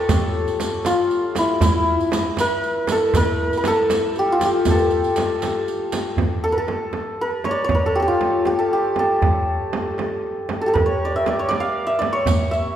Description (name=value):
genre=Persian modal ensemble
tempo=79 BPM (dotted quarters)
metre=6/8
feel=straight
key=A dastgah homayun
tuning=A4 = 441 Hz
part: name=santur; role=melody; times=0.0-12.8 s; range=E4 to F5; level=-20 LUFS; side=equal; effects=none
part: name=vibraphone with medium mallets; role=second line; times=0.0-5.6 s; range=E4 to Bb4+45c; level=-25 LUFS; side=left 3 dB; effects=none
part: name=frame drum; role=percussion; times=0.1-12.4 s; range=none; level=-26 LUFS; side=right 2 dB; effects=none
part: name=riq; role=percussion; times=0.1-6.0, 12.3-12.6 s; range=none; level=-32 LUFS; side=right 3 dB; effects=none
part: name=tombak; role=percussion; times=0.1-12.7 s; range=none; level=-25 LUFS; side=right 1 dB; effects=none
room=wet recital hall reverb, RT60 1.7 s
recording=heard from further back in the room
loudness=-18 LUFS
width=side -10 dB against mid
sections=0.0-6.2 A section; 6.2-12.8 B section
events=none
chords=none